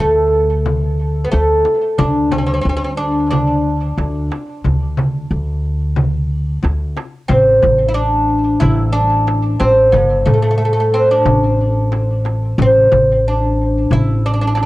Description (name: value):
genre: Arabic maqam ensemble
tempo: 90 BPM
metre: 4/4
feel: straight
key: A maqam bayati from 7.3 s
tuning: A4 = 439 Hz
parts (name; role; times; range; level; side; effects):
- oud; melody; 0.0-14.7 s; A3 to E4; -14 LUFS; equal; tape echo
- upright bass; bass; 0.0-14.7 s; G1 to A2; -17 LUFS; equal; none
- frame drum; percussion; 0.7-14.7 s; none; -23 LUFS; left 5 dB; none
- darbuka; percussion; 2.0-14.7 s; none; -23 LUFS; right 4 dB; none
room: light reverb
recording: home recording on cassette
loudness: -13 LUFS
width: side -18 dB against mid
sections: 0.0-7.3 A section; 7.3-14.7 B section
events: none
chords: none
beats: 0.65 1.32 | 1.98 2.65 3.31 3.97 | 4.64 5.30 5.96 6.63 | 7.29 7.95 8.62 9.28 | 9.94 10.60 11.26 11.93 | 12.59 13.25 13.91 14.57